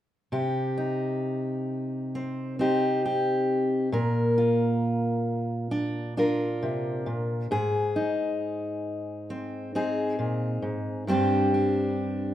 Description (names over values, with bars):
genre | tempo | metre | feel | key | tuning
folk, solo fingerstyle acoustic guitar | 67 BPM | 4/4 | rubato | C minor | A4 = 441 Hz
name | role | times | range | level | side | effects
fingerpicked steel-string acoustic guitar | solo | 0.3-12.3 s | G2 to Bb4 | -25 LUFS | equal | none
room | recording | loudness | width
moderate recital hall reverb, RT60 1.4 s | minimal, uncompressed stereo recording | -25 LUFS | side -12 dB against mid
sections
0.3-12.3 A section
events
none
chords
0.3 Cm; 3.9 Bb; 7.5 Ab; 11.1 Gsus4